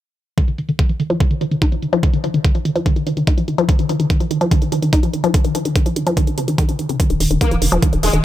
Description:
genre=psychedelic trance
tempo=145 BPM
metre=4/4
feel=straight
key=unclear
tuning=A4 = 441 Hz
part: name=woody wave-folded pluck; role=riff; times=0.4-8.2 s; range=Db3 to Eb4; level=-18 LUFS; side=left 1 dB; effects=chorus, auto-pan, sidechain pumping, digital delay
part: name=electronic hi-hat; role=drums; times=0.4-8.2 s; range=none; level=-28 LUFS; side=right 1 dB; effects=overdrive, low-pass filter on hats, low-pass filter on room
part: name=electronic kick drum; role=drums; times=0.4-7.9 s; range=none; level=-16 LUFS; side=equal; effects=overdrive
part: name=round analog bass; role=bass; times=7.1-8.2 s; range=Eb1 to F1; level=-19 LUFS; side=equal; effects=none
part: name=formant-sweep wobble bass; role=second line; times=7.4-8.2 s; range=Ab3 to Bb3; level=-23 LUFS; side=left 3 dB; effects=ensemble chorus, sidechain pumping, high-pass filter, tape echo
room=little or no reverb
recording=none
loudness=-15 LUFS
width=side -13 dB against mid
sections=0.4-8.2 A section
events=none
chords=0.4 Ebsus2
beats=| 0.38 0.79 1.20 1.62 | 2.03 2.44 2.86 3.27 | 3.69 4.10 4.51 4.93 | 5.34 5.76 6.17 6.58 | 7.00 7.41 7.82

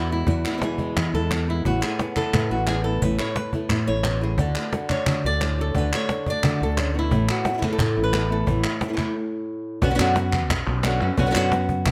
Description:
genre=flamenco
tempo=176 BPM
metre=4/4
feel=straight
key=A major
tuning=A4 = 440 Hz
part: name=flamenco guitar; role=melody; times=0.0-11.9 s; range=E2 to D5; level=-27 LUFS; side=equal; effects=none
part: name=mellow fretless electric bass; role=bass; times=0.0-11.9 s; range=A1 to E3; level=-26 LUFS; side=equal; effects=analog chorus
part: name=flamenco guitar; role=stabs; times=0.1-11.9 s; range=B2 to F#4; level=-33 LUFS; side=equal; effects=none
part: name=cajon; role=percussion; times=0.1-11.9 s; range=none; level=-29 LUFS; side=equal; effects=none
part: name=palmas hand claps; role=percussion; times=0.5-11.9 s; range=none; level=-32 LUFS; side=equal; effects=none
room=light reverb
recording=close, detailed microphones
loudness=-23 LUFS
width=mono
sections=0.0-9.8 A section; 9.8-11.9 B section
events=stop 9.2-9.8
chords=0.0 E; 1.7 Asus2; 4.4 D; 7.1 Asus2; 9.8 Bmadd9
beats=| 0.28 0.62 0.96 1.31 | 1.65 1.99 2.34 2.68 | 3.02 3.36 3.71 4.05 | 4.39 4.73 5.07 5.41 | 5.75 6.09 6.43 6.78 | 7.12 7.46 7.79 8.13 | 8.47 8.81 9.15 9.49 | 9.83 10.17 10.51 10.85 | 11.18 11.52 11.86

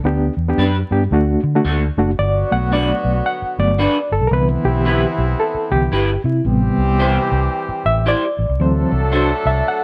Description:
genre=soul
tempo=112 BPM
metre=4/4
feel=swing 61% on 8ths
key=G major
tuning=A4 = 439 Hz
part: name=vintage muted fingered electric bass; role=bass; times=0.0-9.6 s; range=F#1 to D3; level=-21 LUFS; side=equal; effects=none
part: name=overdriven reed electric piano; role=accompaniment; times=0.1-9.8 s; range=C3 to F#5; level=-21 LUFS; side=equal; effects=fast tremolo
part: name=electric guitar through a small old amp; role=stabs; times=0.6-9.3 s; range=A3 to C5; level=-23 LUFS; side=equal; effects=lush chorus
part: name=mellow horn section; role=second line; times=2.2-9.8 s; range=D3 to A4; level=-25 LUFS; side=equal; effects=none
room=light reverb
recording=vinyl crackle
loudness=-17 LUFS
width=mono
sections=0.0-2.2 A section; 2.2-9.8 B section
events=reed electric piano solo 2.2-9.8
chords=0.0 G/D; 1.1 D; 2.2 Gmaj7; 4.3 Cmaj7; 6.5 Am7; 8.6 D7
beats=| 0.05 0.58 1.12 1.65 | 2.19 2.72 3.25 3.79 | 4.32 4.86 5.39 5.92 | 6.46 6.99 7.53 8.06 | 8.59 9.13 9.66

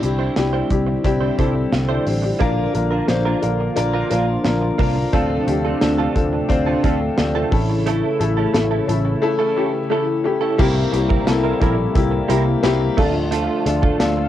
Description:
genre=1980s-style pop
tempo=88 BPM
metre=4/4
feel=straight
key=unclear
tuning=A4 = 440 Hz
part: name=warm concert grand piano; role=accompaniment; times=0.0-14.3 s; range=A3 to D5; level=-21 LUFS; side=left 4 dB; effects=cassette tape, plate reverb
part: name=warm analog pad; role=sustained chords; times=0.0-14.3 s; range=C3 to F4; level=-24 LUFS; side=equal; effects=chorus, cassette tape, plate reverb
part: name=direct-recorded clean electric guitar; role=riff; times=0.0-14.2 s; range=G3 to C5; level=-26 LUFS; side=right 8 dB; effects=ensemble chorus, cassette tape, tape echo
part: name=vintage muted picked electric bass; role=bass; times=0.0-14.2 s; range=A1 to D2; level=-22 LUFS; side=right 1 dB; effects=none
part: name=modern studio drum kit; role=drums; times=0.0-14.2 s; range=crash cymbal, hi-hat, kick drum, snare drum, tambourine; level=-22 LUFS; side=right 1 dB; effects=cassette tape
room=wet booth ambience, RT60 0.2 s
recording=home recording on cassette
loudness=-16 LUFS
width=side -12 dB against mid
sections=0.0-10.6 A section; 10.6-14.3 B section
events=none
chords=0.0 Cadd9; 2.4 Bb; 5.1 Dm7; 7.5 A; 10.6 C7; 13.0 Dm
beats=0.36 1.05 1.73 | 2.41 3.09 3.77 4.46 | 5.14 5.82 6.50 7.18 | 7.87 8.55 9.23 9.91 | 10.59 11.27 11.96 12.64 | 13.32 14.00

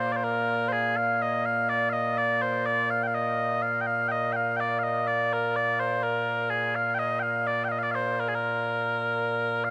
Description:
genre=scottish traditional, Scottish pipe music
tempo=83 BPM (dotted quarters)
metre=6/8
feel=straight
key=Bb mixolydian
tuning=A4 = 440 Hz
part: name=mellow small bagpipes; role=solo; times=0.0-9.7 s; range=Bb2 to G5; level=-27 LUFS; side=equal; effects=none
room=moderate huge ambient reverb, RT60 4.6 s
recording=none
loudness=-27 LUFS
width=mono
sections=0.0-9.6 A section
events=none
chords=none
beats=0.25 | 0.97 1.70 | 2.42 3.14 | 3.87 4.59 | 5.31 6.03 | 6.76 7.48 | 8.20 8.93 | 9.65

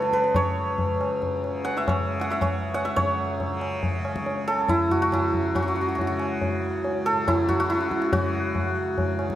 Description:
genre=indian classical, Hindustani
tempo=139 BPM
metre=3/4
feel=straight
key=C# raga malkauns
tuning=A4 = 442 Hz
part: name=santur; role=melody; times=0.0-9.4 s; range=E4 to F#5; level=-24 LUFS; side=right 1 dB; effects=none
part: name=tanpura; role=drone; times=0.0-9.4 s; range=C#2 to C#3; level=-32 LUFS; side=left 1 dB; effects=none
part: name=tabla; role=percussion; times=0.0-9.4 s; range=none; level=-27 LUFS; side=left 1 dB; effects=none
room=moderate recital hall reverb, RT60 1.7 s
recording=none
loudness=-22 LUFS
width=side -12 dB against mid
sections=0.0-3.0 A section; 3.0-9.4 B section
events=none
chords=none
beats=| 0.36 0.79 1.23 | 1.66 2.10 2.53 | 2.96 3.40 3.83 | 4.26 4.69 5.12 | 5.55 5.98 6.41 | 6.84 7.27 7.70 | 8.12 8.55 8.98

